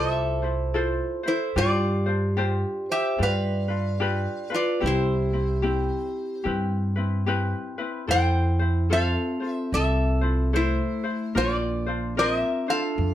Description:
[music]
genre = Hawaiian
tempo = 74 BPM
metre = 4/4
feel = swing 62% on 8ths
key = C major, F major from 8.1 s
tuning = A4 = 440 Hz
[part]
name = metal-body resonator slide guitar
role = melody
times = 0.0-13.1 s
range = E4 to G5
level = -26 LUFS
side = left 1 dB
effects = none
[part]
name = vibraphone with soft mallets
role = second line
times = 0.0-13.1 s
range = A3 to D5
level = -30 LUFS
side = right 2 dB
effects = none
[part]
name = ukulele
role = accompaniment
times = 0.0-13.1 s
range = C4 to C5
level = -30 LUFS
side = left 3 dB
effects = none
[part]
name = upright bass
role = bass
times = 0.0-13.1 s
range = Bb1 to G2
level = -25 LUFS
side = equal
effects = none
[sound]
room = moderate studio reverb, RT60 0.6 s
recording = heard from further back in the room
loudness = -22 LUFS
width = side -12 dB against mid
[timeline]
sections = 0.0-8.1 A section; 8.1-13.1 B section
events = none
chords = 0.0 Fmaj7; 1.6 G7sus4; 3.2 G7; 4.8 Cmaj7; 8.1 Fmaj7; 11.4 Bbadd9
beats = 0.74 | 1.55 2.37 3.19 4.00 | 4.82 5.64 6.45 7.27 | 8.09 8.90 9.72 10.54 | 11.35 12.17 12.99

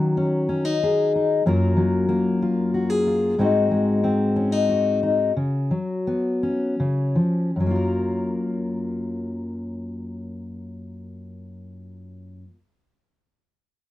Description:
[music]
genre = folk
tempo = 76-94 BPM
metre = 3/4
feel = straight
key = F# major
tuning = A4 = 440 Hz
[part]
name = fingerpicked steel-string acoustic guitar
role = accompaniment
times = 0.0-12.6 s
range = F#2 to A#4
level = -21 LUFS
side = left 2 dB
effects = none
[sound]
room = moderate booth ambience, RT60 0.2 s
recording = dry, close 1970s-style studio recording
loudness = -20 LUFS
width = side -14 dB against mid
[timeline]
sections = 0.0-7.5 A section; 7.5-12.2 B section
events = slowing down 3.4-7.5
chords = 0.0 D#m7; 1.5 F#maj7; 3.4 G#7; 5.3 C#7sus4; 6.8 C#; 7.5 F#maj7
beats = 0.17 0.81 | 1.46 2.10 2.74 | 3.38 4.03 4.68 | 5.35 6.04 6.78 | 7.54 8.32 9.10 | 9.87 10.64 11.41

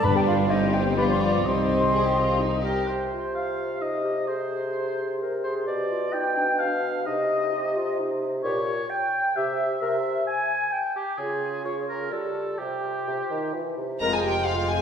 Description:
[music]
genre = quick classical-period movement for symphony orchestra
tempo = 129 BPM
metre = 3/4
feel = straight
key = C minor, F minor from 8.4 s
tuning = A4 = 441 Hz
[part]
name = warm studio violin section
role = melody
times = 0.0-2.9, 14.0-14.8 s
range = D4 to Bb5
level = -28 LUFS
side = left 2 dB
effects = none
[part]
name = silver concert flute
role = second line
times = 0.0-14.8 s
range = G4 to F6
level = -31 LUFS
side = left 1 dB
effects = none
[part]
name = warm chamber violin section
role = second line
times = 0.0-2.7, 14.0-14.8 s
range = Ab3 to F4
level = -33 LUFS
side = left 3 dB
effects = none
[part]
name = warm clarinet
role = second line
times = 0.0-14.8 s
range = D4 to D5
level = -32 LUFS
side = left 2 dB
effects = none
[part]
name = warm oboe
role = second line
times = 0.0-14.8 s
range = G4 to Ab5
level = -28 LUFS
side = right 1 dB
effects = none
[part]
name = dark chamber viola section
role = accompaniment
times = 0.0-2.6, 14.0-14.8 s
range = G3 to Bb4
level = -29 LUFS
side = right 1 dB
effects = none
[part]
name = mellow French horn section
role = sustained chords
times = 0.0-2.6, 14.0-14.2 s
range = Eb3 to D4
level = -32 LUFS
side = left 2 dB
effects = none
[part]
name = clear chamber double bass section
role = bass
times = 0.0-2.7, 14.0-14.8 s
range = F1 to C2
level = -31 LUFS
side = right 1 dB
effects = none
[part]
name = warm studio cello section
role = bass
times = 0.0-2.6, 14.0-14.8 s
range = F2 to C3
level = -32 LUFS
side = right 2 dB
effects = none
[part]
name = timpani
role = percussion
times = 0.0-0.5 s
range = G2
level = -31 LUFS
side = equal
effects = none
[part]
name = mellow bassoon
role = accompaniment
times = 2.9-14.8 s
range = Bb2 to Ab3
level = -29 LUFS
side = equal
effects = none
[sound]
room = wet scoring stage reverb, RT60 1.6 s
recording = heard from further back in the room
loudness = -23 LUFS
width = side -7 dB against mid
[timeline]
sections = 0.0-2.9 A section; 2.9-14.0 B section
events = none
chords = 0.0 G; 0.5 Cm/G; 1.0 G7; 1.4 Cm; 5.7 G7/B; 7.1 Cm; 8.4 Gdim/Bb; 9.4 C; 11.2 Db; 12.1 Fadd9/G; 12.6 Csus4; 13.5 C/E; 14.0 Fm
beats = | 0.03 0.50 0.97 | 1.45 1.93 2.40 | 2.88 3.35 3.81 | 4.27 4.74 5.21 | 5.67 6.13 6.59 | 7.06 7.52 7.98 | 8.44 8.90 9.36 | 9.81 10.27 10.72 | 11.18 11.65 12.11 | 12.59 13.06 13.54 | 14.01 14.47

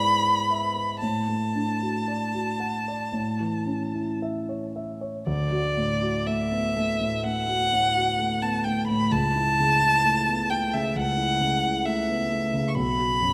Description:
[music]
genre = classical, romantic duo for violin and grand piano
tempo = 56-67 BPM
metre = 4/4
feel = rubato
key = D major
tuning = A4 = 440 Hz
[part]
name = warm violin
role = melody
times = 0.0-13.3 s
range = D5 to C#6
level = -27 LUFS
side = equal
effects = none
[part]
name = dark concert grand piano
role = accompaniment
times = 0.0-13.3 s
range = B1 to F#5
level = -29 LUFS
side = equal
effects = none
[sound]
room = moderate concert hall reverb, RT60 2.2 s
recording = none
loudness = -25 LUFS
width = mono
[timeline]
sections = 0.0-5.3 A section; 5.3-13.3 B section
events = none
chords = 0.0 E7/G#; 1.0 D/A; 3.1 A; 5.3 D; 9.1 A/C#; 12.8 B5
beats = | 1.02 2.09 3.15 4.22 | 5.27 6.25 7.23 8.17 | 9.11 10.04 10.96 11.86 | 12.76

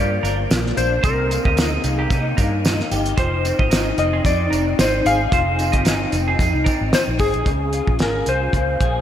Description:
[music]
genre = indie pop, bedroom pop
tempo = 112 BPM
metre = 4/4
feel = swing 55% on 16ths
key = F dorian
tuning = A4 = 440 Hz
[part]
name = clean lap steel guitar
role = melody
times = 0.0-9.0 s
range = Ab4 to F5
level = -22 LUFS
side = left 2 dB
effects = analog chorus, slapback echo, tape echo
[part]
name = semi-hollow electric guitar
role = second line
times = 0.0-6.8 s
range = Bb3 to Eb5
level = -27 LUFS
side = right 4 dB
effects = lush chorus, slapback echo, tape echo
[part]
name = electric guitar through a small old amp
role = accompaniment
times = 0.0-9.0 s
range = G2 to Ab4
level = -24 LUFS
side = left 2 dB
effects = ensemble chorus, warbly pitch drift, slapback echo
[part]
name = vintage muted fingered electric bass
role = bass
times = 0.0-9.0 s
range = F1 to C3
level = -23 LUFS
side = equal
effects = none
[part]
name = cloth-damped thuddy drum kit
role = drums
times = 0.2-8.9 s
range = hi-hat, kick drum, snare drum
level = -21 LUFS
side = equal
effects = none
[part]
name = tambourine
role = percussion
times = 0.3-7.3 s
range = none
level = -35 LUFS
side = right 7 dB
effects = none
[sound]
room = moderate lush hall reverb, RT60 2.5 s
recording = big arena sound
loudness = -16 LUFS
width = side -10 dB against mid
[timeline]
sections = 0.0-7.5 A section; 7.5-9.0 B section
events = none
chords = 0.0 Gm7; 1.0 Cm7; 3.2 Fm7; 7.5 Db6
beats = 0.50 | 1.03 1.57 2.10 2.64 | 3.18 3.71 4.25 4.79 | 5.32 5.86 6.39 6.93 | 7.46 8.00 8.54

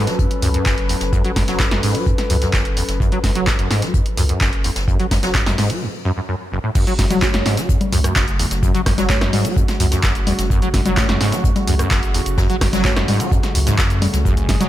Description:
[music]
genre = acid house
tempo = 128 BPM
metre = 4/4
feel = straight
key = F# minor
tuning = A4 = 440 Hz
[part]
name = warm analog pad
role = sustained chords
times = 0.0-14.7 s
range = C#3 to B4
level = -27 LUFS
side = equal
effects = chorus, sidechain pumping
[part]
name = acid bass, saw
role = riff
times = 0.0-14.7 s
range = F#1 to F#3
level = -21 LUFS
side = equal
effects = tube saturation, ensemble chorus, vintage 12-bit sampler grit, analog delay
[part]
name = jazz brush drum kit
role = drums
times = 0.1-14.6 s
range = hi-hat, snare drum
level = -31 LUFS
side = left 2 dB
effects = high-pass filter on hats, high-pass filter on snare, high-pass filter on room
[part]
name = punchy analog drum machine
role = drums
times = 0.1-14.7 s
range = congas, crash cymbal, handclaps, hi-hat, rim click, shaker, snare drum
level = -22 LUFS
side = left 1 dB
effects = overdrive
[part]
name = round analog bass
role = bass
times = 0.2-14.7 s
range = F#1 to F#2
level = -23 LUFS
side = equal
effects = sidechain pumping
[part]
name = electronic kick drum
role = drums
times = 0.2-14.6 s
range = none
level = -19 LUFS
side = equal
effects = overdrive
[part]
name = deep mellow chord stab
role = stabs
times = 7.2-14.7 s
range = A3 to C#5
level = -28 LUFS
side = right 2 dB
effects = chorus, phaser, vintage 12-bit sampler grit, analog delay
[sound]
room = light reverb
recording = none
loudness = -15 LUFS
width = side -13 dB against mid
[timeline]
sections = 0.0-6.8 A section; 6.8-14.7 B section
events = break 5.8-6.8; drop 6.8-14.7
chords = 0.0 F#m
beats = 0.19 0.66 | 1.13 1.60 2.06 2.53 | 3.00 3.47 3.94 4.41 | 4.88 5.35 5.82 6.28 | 6.75 7.22 7.69 8.16 | 8.63 9.10 9.56 10.03 | 10.50 10.97 11.44 11.91 | 12.38 12.85 13.31 13.78 | 14.25

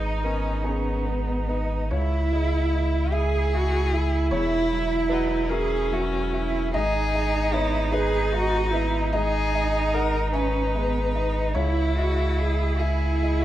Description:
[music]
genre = neoclassical piano and strings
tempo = 50 BPM (dotted quarters)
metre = 6/8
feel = rubato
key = G# minor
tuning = A4 = 441 Hz
[part]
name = rich violin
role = melody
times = 0.0-13.4 s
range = B3 to B4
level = -30 LUFS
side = left 5 dB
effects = none
[part]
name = rich cello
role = second line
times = 0.0-13.4 s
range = B3 to G#4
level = -27 LUFS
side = right 4 dB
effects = none
[part]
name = felt-muted upright piano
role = accompaniment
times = 0.0-13.4 s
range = C#2 to G#5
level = -31 LUFS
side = left 2 dB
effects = none
[part]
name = rich viola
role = accompaniment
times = 0.0-13.4 s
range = D#4 to E4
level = -33 LUFS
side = right 2 dB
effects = none
[part]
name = warm sub bass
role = bass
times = 0.0-13.4 s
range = E1 to C#2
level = -25 LUFS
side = equal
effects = none
[sound]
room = small room ambience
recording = rough home demo mix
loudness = -22 LUFS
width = side -13 dB against mid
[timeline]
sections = 0.0-13.4 A section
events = none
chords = 0.0 G#m; 1.9 C#madd9; 4.3 Esus2; 6.7 G#m; 11.6 C#madd9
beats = 0.65 | 1.92 3.13 | 4.32 5.51 | 6.75 7.94 | 9.13 10.34 | 11.55 12.80

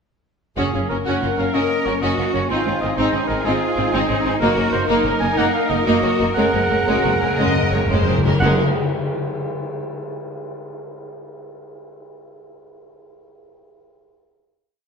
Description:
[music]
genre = cinematic, heroic adventure film score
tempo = 114-127 BPM (dotted quarters)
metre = 12/8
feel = straight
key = Gb lydian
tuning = A4 = 440 Hz
[part]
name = warm symphonic violin section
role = melody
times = 0.6-8.6 s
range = Gb4 to Eb5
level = -26 LUFS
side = left 4 dB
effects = none
[part]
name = mellow cor anglais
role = second line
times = 0.6-8.5 s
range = Ab4 to Ab5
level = -25 LUFS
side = right 3 dB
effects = none
[part]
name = rich symphonic violin section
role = second line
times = 0.6-8.6 s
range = Bb3 to Gb4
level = -26 LUFS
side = left 3 dB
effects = none
[part]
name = rich symphonic viola section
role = accompaniment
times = 0.6-8.6 s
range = Ab3 to Db4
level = -23 LUFS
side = right 2 dB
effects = none
[part]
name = dark French horn section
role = sustained chords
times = 0.6-8.6 s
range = Bb3 to Ab4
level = -26 LUFS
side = left 4 dB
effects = none
[part]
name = rich symphonic double bass section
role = bass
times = 0.6-8.6 s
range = Gb1 to Ab1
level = -26 LUFS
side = right 4 dB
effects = none
[part]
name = timpani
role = percussion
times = 0.6-1.0, 6.4-8.6 s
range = Gb2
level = -23 LUFS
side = left 2 dB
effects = none
[part]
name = rich symphonic cello section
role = bass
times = 1.5-8.6 s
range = Gb2 to Bb4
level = -24 LUFS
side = right 1 dB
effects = none
[part]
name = cymbal swell and tam-tam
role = percussion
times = 4.4-9.7 s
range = none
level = -29 LUFS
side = left 1 dB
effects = none
[sound]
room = wet scoring stage reverb, RT60 1.6 s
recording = none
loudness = -17 LUFS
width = side -6 dB against mid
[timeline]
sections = 0.6-8.4 theme; 8.4-10.5 final chord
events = slowing down 5.1-8.4; timpani fill 6.4-8.4; band accent 8.4-8.8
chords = 0.6 Gb; 2.5 Ab; 4.4 Ebm/Gb; 6.4 Gbadd9; 8.4 Gbsus2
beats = | 0.58 1.07 1.55 2.02 | 2.51 2.98 3.46 3.94 | 4.41 4.89 5.38 5.87 | 6.37 6.87 7.38 7.90 | 8.42 8.94 9.45

